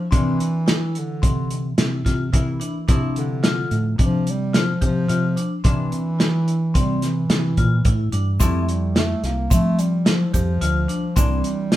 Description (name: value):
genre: progressive instrumental, band music in an uneven meter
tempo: 109 BPM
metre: 5/4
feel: straight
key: C mixolydian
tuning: A4 = 438 Hz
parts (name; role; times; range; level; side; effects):
- mellow bass clarinet; melody; 0.0-11.8 s; C3 to Bb3; -24 LUFS; equal; none
- archtop guitar, miked and amplified; accompaniment; 0.0-11.8 s; E3 to E4; -31 LUFS; equal; none
- vibraphone with medium hard mallets; arpeggios; 0.1-11.8 s; C4 to G4; -29 LUFS; left 3 dB; none
- fingered electric bass; bass; 0.1-11.4 s; C2 to F3; -22 LUFS; equal; none
- warm soul drum kit; drums; 0.1-11.8 s; hi-hat, kick drum, snare drum; -20 LUFS; equal; none
- egg shaker; percussion; 8.4-11.4 s; none; -33 LUFS; right 5 dB; none
room: moderate studio reverb, RT60 0.7 s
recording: band playing live in one room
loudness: -18 LUFS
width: side -14 dB against mid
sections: 0.0-11.8 A section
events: none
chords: 0.1 C9; 2.9 Dm7; 5.6 C9; 8.4 Fmaj7; 11.2 C9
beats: | 0.12 0.67 1.22 1.78 2.33 | 2.88 3.44 3.99 4.54 5.09 | 5.64 6.20 6.75 7.30 7.85 | 8.40 8.96 9.51 10.06 10.61 | 11.16 11.71